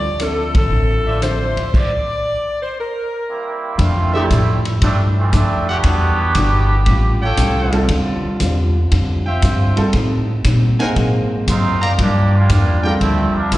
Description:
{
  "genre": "jazz, big band swing",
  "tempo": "117 BPM",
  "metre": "4/4",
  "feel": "swing 68% on 8ths",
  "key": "F major from 3.8 s",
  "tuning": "A4 = 442 Hz",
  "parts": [
    { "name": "warm saxophone section", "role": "melody", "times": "0.0-3.6 s", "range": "A4 to D5", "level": "-21 LUFS", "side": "left 1 dB", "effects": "slapback echo" },
    { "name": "vintage hollow-body jazz guitar", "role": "accompaniment", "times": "0.0-13.6 s", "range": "G2 to F#4", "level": "-24 LUFS", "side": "left 2 dB", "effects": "slapback echo" },
    { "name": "upright bass", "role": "bass", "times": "0.0-13.6 s", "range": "G1 to Bb2", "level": "-16 LUFS", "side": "equal", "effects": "none" },
    { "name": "vintage drum kit", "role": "drums", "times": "0.2-13.6 s", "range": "crash cymbal, hi-hat, kick drum, ride cymbal, rim click", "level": "-23 LUFS", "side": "equal", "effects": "none" },
    { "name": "clear trumpet section", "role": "stabs", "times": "1.1-12.9 s", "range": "F4 to Bb5", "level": "-24 LUFS", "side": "equal", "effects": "slapback echo" },
    { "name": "muted trombone section", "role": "second line", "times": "3.3-7.7, 11.5-13.6 s", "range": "D3 to G4", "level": "-20 LUFS", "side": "right 2 dB", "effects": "slapback echo" },
    { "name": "clear concert grand piano", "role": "accompaniment", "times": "4.1-4.3, 7.7-13.5 s", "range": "E3 to C5", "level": "-21 LUFS", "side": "right 2 dB", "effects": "slapback echo" }
  ],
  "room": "studio reverb",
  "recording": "live gig heard through the venue's PA, recital hall reverb, nothing above 10.6 kHz",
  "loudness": "-14 LUFS",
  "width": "side -16 dB against mid",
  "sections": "0.0-3.8 A section; 3.8-13.6 B section",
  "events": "band accent 0.5; stop 1.7-3.8; trombone section solo 3.8-13.6",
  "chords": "0.0 Dm9; 1.7 N.C.; 2.8 C7; 3.8 Fmaj13; 5.8 Em9; 6.9 A7alt; 7.9 Dm11; 9.9 Am7b5; 11.0 Ab9; 12.0 Gm7"
}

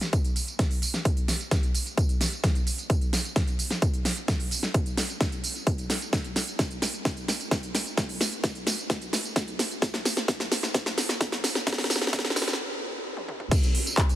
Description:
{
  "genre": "EDM",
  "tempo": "130 BPM",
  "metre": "4/4",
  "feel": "straight",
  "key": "none",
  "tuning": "none",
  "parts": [
    { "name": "big-room dance drum kit", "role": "drums", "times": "0.0-14.2 s", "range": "crash cymbal, handclaps, hi-hat, snare drum, tambourine, toms", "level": "-27 LUFS", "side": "equal", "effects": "none" },
    { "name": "electronic kick drum", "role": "drums", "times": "0.1-14.1 s", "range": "none", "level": "-26 LUFS", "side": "equal", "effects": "none" }
  ],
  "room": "light reverb",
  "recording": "heavily compressed radio sound, high-pass filter, faint mains hum",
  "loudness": "-25 LUFS",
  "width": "side -14 dB against mid",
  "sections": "0.0-13.5 A section",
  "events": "build-up 0.0-13.5; drum fill 0.0-12.6, 13.2-13.5; filter sweep 0.0-13.5; stop 12.6-13.5",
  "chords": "none"
}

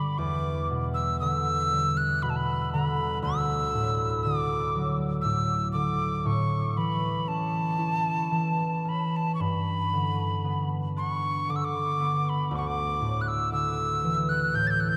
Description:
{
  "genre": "celtic folk, Celtic slow air",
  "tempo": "59 BPM",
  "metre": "3/4",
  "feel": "rubato",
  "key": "D major",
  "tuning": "A4 = 440 Hz",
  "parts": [
    { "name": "mellow mid whistle", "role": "melody", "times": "0.0-15.0 s", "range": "A5 to A6", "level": "-30 LUFS", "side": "equal", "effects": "none" },
    { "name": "concert harp", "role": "accompaniment", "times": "0.0-15.0 s", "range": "D2 to E4", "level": "-30 LUFS", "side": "equal", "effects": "none" }
  ],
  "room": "wet cathedral reverb, RT60 6.4 s",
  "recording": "in a vast, echoing space",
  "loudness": "-27 LUFS",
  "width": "mono",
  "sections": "0.0-15.0 A section",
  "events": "none",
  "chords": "0.2 Em7; 3.2 D; 6.2 A; 9.4 G; 12.5 Dsus2"
}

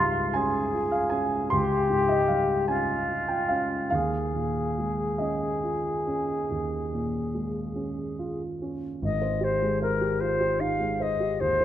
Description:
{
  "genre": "classical, impressionist duo for flute and grand piano",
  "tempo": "46-54 BPM (dotted quarters)",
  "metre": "12/8",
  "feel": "rubato",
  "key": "Ab major",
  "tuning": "A4 = 441 Hz",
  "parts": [
    { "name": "silver concert flute", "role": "melody", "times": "0.0-11.6 s", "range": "F4 to F5", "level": "-27 LUFS", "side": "left 2 dB", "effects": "none" },
    { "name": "dark concert grand piano", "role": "accompaniment", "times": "0.0-11.6 s", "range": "Ab1 to C6", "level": "-27 LUFS", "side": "right 1 dB", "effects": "none" }
  ],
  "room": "moderate scoring stage reverb, RT60 2.0 s",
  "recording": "none",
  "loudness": "-24 LUFS",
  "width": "side -11 dB against mid",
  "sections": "0.0-9.0 A section; 9.0-11.6 B section",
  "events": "none",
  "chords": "0.0 Db; 3.9 Eb9sus4; 9.0 Abmaj7"
}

